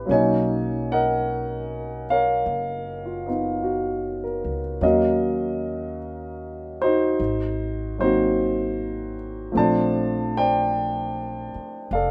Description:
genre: jazz ballad.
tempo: 51 BPM.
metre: 4/4.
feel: swing 69% on 8ths.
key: unclear.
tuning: A4 = 443 Hz.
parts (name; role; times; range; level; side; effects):
warm grand piano; accompaniment; 0.0-12.1 s; F3 to A5; -24 LUFS; equal; none.
upright bass; bass; 0.0-12.1 s; F1 to Eb2; -34 LUFS; equal; none.
room: moderate studio reverb, RT60 0.6 s.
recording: rough home demo mix.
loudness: -24 LUFS.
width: mono.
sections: 0.0-12.1 A section.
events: none.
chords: 0.1 Bmaj9; 4.8 Ebm7; 7.2 Ab9; 9.5 Bbmaj9.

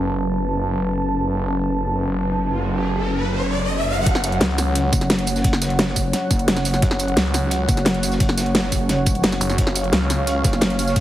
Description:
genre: dark technical drum and bass.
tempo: 174 BPM.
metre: 4/4.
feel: straight.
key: F# harmonic minor.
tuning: A4 = 440 Hz.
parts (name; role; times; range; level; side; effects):
dark analog pad; sustained chords; 0.0-11.0 s; F#3 to A5; -23 LUFS; right 1 dB; chorus, sidechain pumping.
snarling distorted saw bass; bass; 0.0-10.4 s; F#1 to C#2; -23 LUFS; equal; distortion, tube saturation.
riser; sound effects; 2.0-4.1 s; none; -25 LUFS; equal; none.
crunchy breakbeat drum kit; drums; 4.1-11.0 s; hi-hat, snare drum; -33 LUFS; equal; high-pass filter on hats, high-pass filter on snare, high-pass filter on room.
dubstep drum kit; drums; 4.1-11.0 s; hi-hat, snare drum, tambourine; -21 LUFS; equal; none.
electronic kick drum; drums; 4.1-11.0 s; none; -20 LUFS; equal; none.
pulsing pluck wobble bass; bass; 4.9-11.0 s; F#1; -23 LUFS; equal; chorus.
room: light reverb.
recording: heavily compressed radio sound, multiband compression.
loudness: -18 LUFS.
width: side -13 dB against mid.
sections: 0.0-4.1 A section; 4.1-11.0 B section.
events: riser 2.0-4.1; drop 4.1-11.0.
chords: 0.0 F#5.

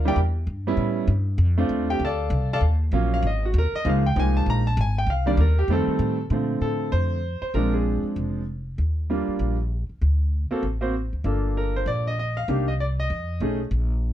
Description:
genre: jazz piano trio.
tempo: 195 BPM.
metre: 4/4.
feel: swing 60% on 8ths.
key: Bb major.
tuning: A4 = 438 Hz.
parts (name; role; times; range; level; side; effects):
clear concert grand piano; melody; 0.0-13.6 s; D3 to Bb5; -25 LUFS; right 1 dB; none.
upright bass; bass; 0.0-14.1 s; F1 to Bb2; -23 LUFS; equal; none.
room: light reverb.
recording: none.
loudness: -21 LUFS.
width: side -12 dB against mid.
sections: 0.0-6.3 A section; 6.3-14.1 B section.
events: grand piano solo 0.0-6.3.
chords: 0.2 Em; 0.8 A7; 1.4 Dm7; 2.6 Ebm7; 3.2 Ab5; 3.9 Db69; 5.1 Cm7; 5.7 F7; 6.3 Bbmaj9; 7.5 Bb9; 8.8 Ebmaj9; 10.0 D7(no3); 11.3 Gm9; 12.5 Cm7; 13.1 F7alt.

